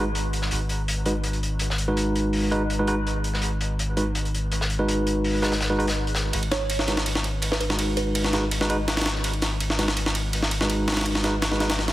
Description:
drum and bass, jungle; 165 BPM; 4/4; straight; G# minor; A4 = 436 Hz
tine electric piano; stabs; 0.0-11.7 s; G#3 to B4; -26 LUFS; right 1 dB; low-pass filter, dub echo
soft dub sub bass; bass; 0.0-11.9 s; G#1; -27 LUFS; equal
crunchy breakbeat drum kit; drums; 0.1-11.9 s; hi-hat, snare drum; -31 LUFS; left 1 dB; high-pass filter on hats, high-pass filter on snare, high-pass filter on room
jungle sampler-style drum kit; drums; 6.3-11.9 s; ride cymbal, snare drum; -25 LUFS; equal
kalimba; melody; 6.5-8.3 s; B4 to C#5; -31 LUFS; right 3 dB; vintage 12-bit sampler grit, dub echo
moderate lush hall reverb, RT60 2.0 s, studio ambience; heavily compressed radio sound; -22 LUFS; side -15 dB against mid
0.0-11.9 A section
0.0 G#m7
0.15 | 0.51 0.88 1.24 1.60 | 1.97 2.33 2.69 3.06 | 3.42 3.79 4.15 4.51 | 4.88 5.24 5.60 5.97 | 6.33 6.70 7.06 7.42 | 7.79 8.15 8.51 8.88 | 9.24 9.60 9.97 10.33 | 10.70 11.06 11.42 11.79

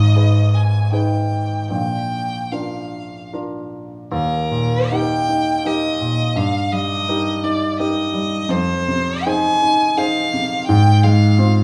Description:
classical, romantic duo for violin and grand piano; 72-88 BPM; 3/4; rubato; Eb major; A4 = 444 Hz
clear violin; melody; 0.0-11.6 s; Bb4 to Ab5; -24 LUFS; equal
warm baby grand piano; accompaniment; 0.0-11.6 s; Ab1 to C5; -20 LUFS; equal
moderate recital hall reverb, RT60 1.5 s; -18 LUFS; mono
0.0-4.1 A section; 4.1-11.6 B section
0.0 Abm; 1.7 Bb; 4.1 Eb; 6.4 Eb/G; 8.5 Fm7; 10.7 Fm/Ab
0.17 0.93 | 1.70 2.52 3.33 | 4.11 4.92 5.65 | 6.37 7.08 7.79 | 8.50 9.26 9.98 | 10.68 11.38

